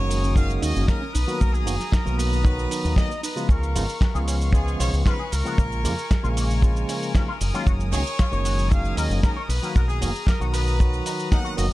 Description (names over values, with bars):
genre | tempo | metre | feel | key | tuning
nu-disco, nu disco | 115 BPM | 4/4 | straight | unclear | A4 = 436 Hz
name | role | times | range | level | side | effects
bright trumpet section | melody | 0.0-11.7 s | Ab4 to Gb5 | -31 LUFS | left 1 dB | tape echo
barky tine electric piano | accompaniment | 0.0-11.7 s | Db3 to Cb5 | -29 LUFS | moving between left 3 dB and right 4 dB | auto-pan, slapback echo
clear chamber violin section | sustained chords | 0.0-11.7 s | Bb4 to Eb6 | -35 LUFS | left 2 dB | sidechain pumping
soft round pluck | arpeggios | 0.0-3.4 s | Bb3 to Gb4 | -35 LUFS | right 4 dB | chorus, vintage 12-bit sampler grit, sidechain pumping, tape echo
fingered electric bass with an envelope filter | bass | 0.0-11.7 s | Gb1 to F2 | -24 LUFS | equal | tube saturation
dusty soul sampler-style drum kit | drums | 0.1-11.7 s | hi-hat, shaker, snare drum | -32 LUFS | right 1 dB | none
kick drum | drums | 0.4-11.4 s | none | -20 LUFS | equal | none
electric guitar with an envelope filter | riff | 3.5-11.7 s | Ab3 to Db5 | -35 LUFS | left 4 dB | ensemble chorus, slapback echo
room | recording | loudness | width
small room ambience | dark, warm production | -20 LUFS | side -18 dB against mid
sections
0.0-11.7 A section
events
none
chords
0.0 Gb69; 1.1 Cbmaj7; 3.5 Db7; 5.6 Bbm7; 7.4 Gb69; 9.5 Cbmaj7